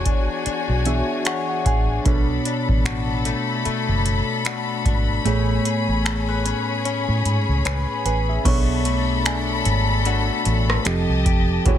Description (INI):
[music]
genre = contemporary R&B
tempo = 75 BPM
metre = 4/4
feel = swing 58% on 16ths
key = B dorian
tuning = A4 = 440 Hz
[part]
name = muted felt-like synth keys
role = accompaniment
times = 0.0-11.8 s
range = A2 to B5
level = -25 LUFS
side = right 2 dB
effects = chorus
[part]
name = rich studio string section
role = sustained chords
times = 0.0-11.8 s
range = D4 to B5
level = -26 LUFS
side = left 4 dB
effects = sidechain pumping
[part]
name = direct-recorded clean electric guitar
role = arpeggios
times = 0.0-11.8 s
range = B2 to C#5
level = -28 LUFS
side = left 10 dB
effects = spring reverb, digital delay
[part]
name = vintage muted fingered electric bass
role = bass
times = 0.0-11.8 s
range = E1 to A2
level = -23 LUFS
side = equal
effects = none
[part]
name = booming analog drum machine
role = drums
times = 0.1-11.8 s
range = crash cymbal, finger snaps, hi-hat, kick drum, rim click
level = -22 LUFS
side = equal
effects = overdrive, soft clipping on snare
[part]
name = synth chime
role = texture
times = 8.5-11.0 s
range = G#5 to C#6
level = -35 LUFS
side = right 2 dB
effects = ensemble chorus, digital delay
[sound]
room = digital ambience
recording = dense, heavily limited modern master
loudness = -18 LUFS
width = side -10 dB against mid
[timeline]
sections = 0.0-8.5 A section; 8.5-11.8 B section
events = synth keys fill 0.5-2.1; kick muted 5.3-8.5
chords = 0.0 E13; 2.1 Bm7; 5.3 Amaj9; 8.5 Bm7; 10.9 F9